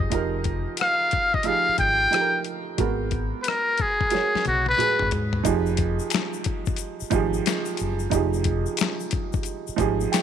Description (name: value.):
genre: R&B, neo-soul.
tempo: 90 BPM.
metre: 4/4.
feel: swing 62% on 16ths.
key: F minor.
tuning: A4 = 441 Hz.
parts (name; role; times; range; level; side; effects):
warm upright piano; accompaniment; 0.0-10.2 s; F3 to G5; -27 LUFS; right 9 dB; none.
deep dub fingered electric bass; bass; 0.0-10.1 s; F1 to Ab2; -27 LUFS; left 1 dB; transformer saturation.
dusty soul sampler-style drum kit; drums; 0.0-10.2 s; finger snaps, hi-hat, kick drum, rim click, snare drum, toms; -27 LUFS; left 4 dB; none.
trumpet with metal mute; melody; 0.8-5.1 s; Gb4 to G5; -23 LUFS; left 1 dB; tape echo.
tube shaker and finger snaps; percussion; 5.5-10.2 s; none; -34 LUFS; left 17 dB; none.
room: moderate plate reverb, RT60 2.8 s.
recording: 1960s-style stereo with parts hard left and right.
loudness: -21 LUFS.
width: side -9 dB against mid.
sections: 0.0-5.5 A section; 5.5-10.2 B section.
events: drum fill 4.1-5.5; upright piano fill 9.4-10.2.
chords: 0.0 Fm9; 2.8 Abm9; 5.5 Fm9.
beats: | 0.12 0.78 1.45 2.12 | 2.78 3.45 4.12 4.78 | 5.45 6.12 6.78 7.45 | 8.12 8.78 9.45 10.12.